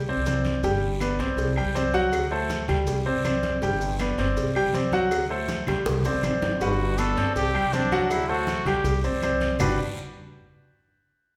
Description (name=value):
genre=latin, Cuban son and guajira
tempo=161 BPM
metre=4/4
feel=straight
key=G major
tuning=A4 = 440 Hz
part: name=upright bass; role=bass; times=0.0-9.8 s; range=G1 to G2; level=-31 LUFS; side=equal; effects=none
part: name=clear baby grand piano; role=arpeggios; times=0.1-9.8 s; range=F#3 to G5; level=-27 LUFS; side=equal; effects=none
part: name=congas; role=percussion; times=0.1-9.7 s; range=none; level=-36 LUFS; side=equal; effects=none
part: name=cowbell and bongos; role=percussion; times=0.3-9.7 s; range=none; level=-38 LUFS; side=equal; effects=none
part: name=guiro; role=percussion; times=0.3-9.7 s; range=none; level=-43 LUFS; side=equal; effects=none
part: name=maracas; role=percussion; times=0.3-9.7 s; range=none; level=-46 LUFS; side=equal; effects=none
part: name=claves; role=percussion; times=1.0-9.7 s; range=none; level=-42 LUFS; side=equal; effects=none
part: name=breathy trumpet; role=melody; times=6.6-9.0 s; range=D4 to A4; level=-30 LUFS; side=equal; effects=none
room=wet large studio reverb, RT60 1.3 s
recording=band playing live in one room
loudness=-25 LUFS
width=mono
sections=0.0-6.6 A section; 6.6-9.6 B section; 9.6-11.1 C section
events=drum fill 5.7-6.6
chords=0.0 Csus2; 0.6 G; 1.4 Csus2; 2.1 D7; 2.9 Csus2; 3.6 G; 4.4 Csus2; 5.1 D7; 5.9 Csus2; 6.6 Gmaj7; 7.4 Csus2; 8.1 D7; 8.9 Csus2; 9.6 Gmaj7